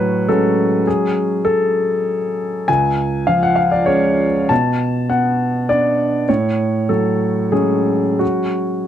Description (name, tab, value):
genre	neoclassical minimalist piano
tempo	84-104 BPM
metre	3/4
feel	rubato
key	F# harmonic minor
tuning	A4 = 440 Hz
part	warm upright piano	solo	0.0-8.9 s	C#2 to A5	-15 LUFS	equal	none
room	little or no reverb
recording	dry, close 1970s-style studio recording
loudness	-15 LUFS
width	side -10 dB against mid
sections	0.0-8.9 A section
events	none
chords	0.0 F#madd9/A; 2.7 C#; 4.5 Bm7; 6.3 F#madd9/A